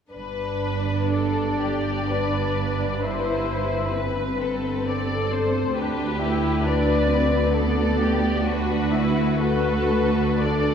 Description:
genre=classical, slow romantic movement for string orchestra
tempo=55-69 BPM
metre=3/4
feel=rubato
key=G major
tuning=A4 = 440 Hz
part: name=rich symphonic violin section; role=melody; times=0.1-10.7 s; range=A4 to D5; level=-29 LUFS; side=left 3 dB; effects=none
part: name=warm studio violin section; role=second line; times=0.1-10.7 s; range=F#4 to B4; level=-27 LUFS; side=left 4 dB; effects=none
part: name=rich studio viola section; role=accompaniment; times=0.1-10.7 s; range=B3 to F#4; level=-27 LUFS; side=right 1 dB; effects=none
part: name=warm chamber cello section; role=bass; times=0.1-10.7 s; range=D2 to G2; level=-28 LUFS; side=right 2 dB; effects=none
part: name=warm chamber double bass section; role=bass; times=0.1-10.7 s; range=G1 to D2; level=-26 LUFS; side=right 2 dB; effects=none
room=wet scoring stage reverb, RT60 1.9 s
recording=heard from further back in the room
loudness=-20 LUFS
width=side -7 dB against mid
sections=0.1-10.7 A section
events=none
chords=0.1 G; 3.0 Am7/G; 5.8 G/D; 8.4 D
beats=| 0.12 1.11 2.10 | 3.05 3.97 4.88 | 5.76 6.65 7.53 | 8.45 9.39 10.41

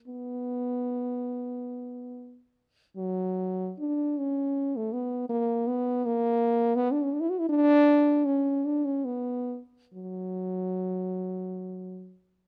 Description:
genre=classical, free, expressive piece for unaccompanied French horn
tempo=47-85 BPM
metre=3/4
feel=rubato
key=B minor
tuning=A4 = 440 Hz
part: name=mellow French horn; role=solo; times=0.1-12.2 s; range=F#3 to F#4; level=-28 LUFS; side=equal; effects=none
room=little or no reverb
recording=close, detailed microphones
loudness=-28 LUFS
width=mono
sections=0.0-3.0 A section; 3.0-12.5 B section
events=none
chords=none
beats=| 0.07 1.02 1.92 | 2.97 3.77 4.54 | 5.31 6.06 6.77 | 7.49 8.24 9.04 | 9.93 10.83 11.72

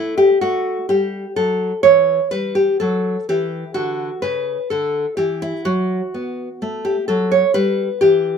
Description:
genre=classical, baroque-style dance for nylon-string guitar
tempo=63 BPM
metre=4/4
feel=rubato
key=D major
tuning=A4 = 440 Hz
part: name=nylon-string guitar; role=solo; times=0.0-8.4 s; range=C#3 to C#5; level=-16 LUFS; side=equal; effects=none
room=moderate studio ambience, RT60 0.5 s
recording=minimal, uncompressed stereo recording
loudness=-16 LUFS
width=side -6 dB against mid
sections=0.0-8.4 A section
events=none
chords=0.0 A5; 3.8 D; 7.5 Em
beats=0.90 1.85 2.81 | 3.76 4.70 5.65 6.60 | 7.54

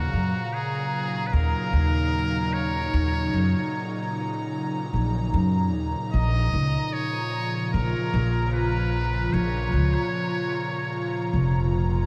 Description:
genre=ambient dub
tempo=75 BPM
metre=4/4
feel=swing 55% on 16ths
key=Eb minor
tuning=A4 = 441 Hz
part: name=trumpet with metal mute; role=melody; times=0.0-11.7 s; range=Gb4 to Eb5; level=-34 LUFS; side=equal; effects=dub echo
part: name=airy breathy pad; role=sustained chords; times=0.0-12.1 s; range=Bb2 to Bb5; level=-29 LUFS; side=equal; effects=chorus
part: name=upright bass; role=bass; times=0.0-12.1 s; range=F1 to Gb2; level=-26 LUFS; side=equal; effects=tube saturation
room=moderate huge ambient reverb, RT60 3.9 s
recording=dreamy mix soaked in reverb, vinyl crackle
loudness=-25 LUFS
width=mono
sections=0.0-12.1 A section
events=none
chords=0.0 Ebm7; 6.1 Bbm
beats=0.53 1.33 2.13 | 2.93 3.73 4.53 5.33 | 6.13 6.93 7.73 8.53 | 9.33 10.13 10.93 11.73

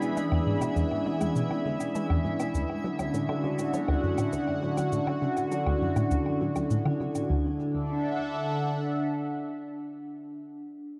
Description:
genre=ambient, sequencer-driven space music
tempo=101 BPM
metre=4/4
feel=straight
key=D lydian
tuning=A4 = 437 Hz
part: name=phased analog pad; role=sustained chords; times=0.0-10.4 s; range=D3 to B5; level=-33 LUFS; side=equal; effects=phaser, chorus
part: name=vibraphone with soft mallets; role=arpeggios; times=0.0-11.0 s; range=C#4 to D5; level=-35 LUFS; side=equal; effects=tape echo
part: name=cabasa and woodblock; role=percussion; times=0.0-7.3 s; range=none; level=-44 LUFS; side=equal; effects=tape echo
part: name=twinkling granular texture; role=texture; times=0.0-7.3 s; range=G#3 to G#5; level=-44 LUFS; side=equal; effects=built-in reverb
part: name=resonant blip pluck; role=riff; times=0.2-7.6 s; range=D2 to G#3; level=-32 LUFS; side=equal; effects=phaser, tape echo
room=wet plate reverb, RT60 3.5 s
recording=dark, warm production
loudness=-28 LUFS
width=mono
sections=0.0-7.3 A section; 7.3-9.7 B section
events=none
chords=0.0 E; 2.5 Dadd9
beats=| 0.17 0.77 1.36 1.95 | 2.55 3.14 3.73 4.33 | 4.92 5.52 6.11 6.71 | 7.30 7.89 8.49 9.08

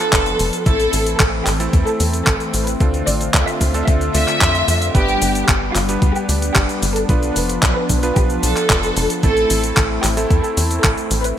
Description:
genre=italo disco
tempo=112 BPM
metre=4/4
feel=straight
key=A minor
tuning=A4 = 439 Hz
part: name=warm studio violin section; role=melody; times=0.0-11.4 s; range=F4 to E5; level=-21 LUFS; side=equal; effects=digital delay
part: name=warm analog pad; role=sustained chords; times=0.0-11.4 s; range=D3 to F4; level=-24 LUFS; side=left 2 dB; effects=chorus
part: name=clear electric grand piano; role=stabs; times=0.0-11.3 s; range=A3 to B4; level=-25 LUFS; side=right 3 dB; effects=ping-pong delay
part: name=tight sequencer bass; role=bass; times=0.1-11.3 s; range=F1 to F2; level=-21 LUFS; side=equal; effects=tube saturation
part: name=clean 12-bit digital drum machine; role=drums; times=0.1-11.3 s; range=cabasa, handclaps, hi-hat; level=-21 LUFS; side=equal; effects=none
part: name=electronic kick drum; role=drums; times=0.1-10.9 s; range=none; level=-18 LUFS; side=equal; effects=none
room=moderate plate reverb, RT60 2.4 s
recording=bright 1980s-style digital production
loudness=-14 LUFS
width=side -10 dB against mid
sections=0.0-11.4 A section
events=none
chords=0.0 Bdim; 0.7 Am; 2.8 Dm7; 4.9 G; 7.1 Bdim; 9.2 Am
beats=0.13 | 0.66 1.20 1.73 2.27 | 2.81 3.34 3.88 4.41 | 4.95 5.48 6.02 6.56 | 7.09 7.63 8.16 8.70 | 9.23 9.77 10.31 10.84 | 11.38

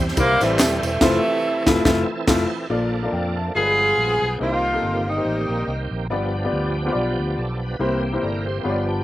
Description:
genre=uptempo gospel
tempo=141 BPM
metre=4/4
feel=swing 56% on 8ths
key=unclear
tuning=A4 = 442 Hz
part: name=bright tonewheel organ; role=sustained chords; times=0.0-9.0 s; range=Eb3 to G5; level=-28 LUFS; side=right 3 dB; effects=fast rotary speaker, overdrive, chorus vibrato
part: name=fingered electric bass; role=bass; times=0.0-9.0 s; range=Eb1 to F2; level=-27 LUFS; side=equal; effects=none
part: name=crisp fusion drum kit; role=drums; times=0.1-2.4 s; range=crash cymbal, kick drum, ride cymbal, snare drum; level=-22 LUFS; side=right 1 dB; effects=none
part: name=bright saxophone section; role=melody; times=0.2-5.9 s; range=C3 to Ab4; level=-20 LUFS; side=right 1 dB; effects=none
part: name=warm upright piano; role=accompaniment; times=0.2-9.0 s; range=G2 to A5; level=-23 LUFS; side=left 2 dB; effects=slapback echo
part: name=tambourine and handclaps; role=percussion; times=0.2-0.9 s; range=none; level=-28 LUFS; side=equal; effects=slapback echo
room=little or no reverb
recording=none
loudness=-18 LUFS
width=side -15 dB against mid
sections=0.0-2.7 A section; 2.7-9.0 B section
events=band accent 1.0-2.7; upright piano fill 8.7-9.0; tonewheel organ fill 8.7-9.0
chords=0.0 C; 1.0 Fmaj7; 2.7 Bbmaj7; 3.6 G7b9; 4.4 Cm7; 6.1 G7; 7.8 C7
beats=0.17 0.59 | 1.01 1.44 1.86 2.28 | 2.71 3.13 3.55 3.98 | 4.40 4.83 5.25 5.68 | 6.10 6.53 6.95 7.38 | 7.80 8.23 8.65

